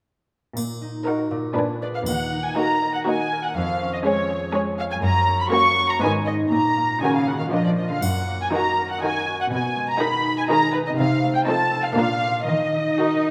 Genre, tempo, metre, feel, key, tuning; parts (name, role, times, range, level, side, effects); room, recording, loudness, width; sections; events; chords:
cinematic, playful, whimsical film cue; 120 BPM; 3/4; straight; Eb minor; A4 = 440 Hz
concert harp; arpeggios; 0.6-13.3 s; F2 to Ab5; -29 LUFS; equal
muted studio cello section; bass; 0.6-12.9 s; Eb2 to F3; -28 LUFS; equal
triangle; percussion; 0.6-3.0, 8.0-9.0 s; -40 LUFS; equal
muted studio violin section; melody; 1.1-13.3 s; Cb5 to Db6; -25 LUFS; equal
muted studio violin section; second line; 1.1-13.3 s; Eb4 to Db5; -30 LUFS; equal
muted studio viola section; accompaniment; 1.1-13.3 s; Eb3 to Eb4; -30 LUFS; equal
wet scoring stage reverb, RT60 1.7 s; -22 LUFS; mono
0.6-2.1 A section; 2.1-13.3 B section
0.6 Ebm/Bb; 1.3 Bb7b9; 2.1 Ebm; 3.6 Db/F; 5.0 Gb; 6.0 Abm; 6.5 Ebm/Bb; 7.5 Bb; 8.0 Ebm/Gb; 9.5 Abm/Cb; 11.0 F7/C; 12.0 Bb; 12.5 Ebm